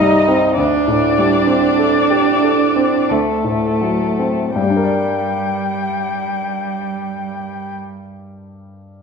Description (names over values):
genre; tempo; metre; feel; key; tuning
classical, slow romantic movement for piano trio; 39-53 BPM; 3/4; rubato; G minor; A4 = 440 Hz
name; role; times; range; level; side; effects
muted violin; melody; 0.0-7.7 s; A4 to G5; -21 LUFS; left 9 dB; none
muted cello; second line; 0.0-7.7 s; G3 to Eb4; -18 LUFS; right 6 dB; none
clear grand piano; accompaniment; 0.0-9.0 s; C2 to D5; -19 LUFS; left 2 dB; none
room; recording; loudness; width
wet scoring stage reverb, RT60 1.8 s; minimal, uncompressed stereo recording; -14 LUFS; side -5 dB against mid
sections
0.0-4.6 A section; 4.6-9.0 B section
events
slowing down 0.0-4.6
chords
0.0 Cm; 0.6 D7sus4; 3.1 D7; 4.6 Gm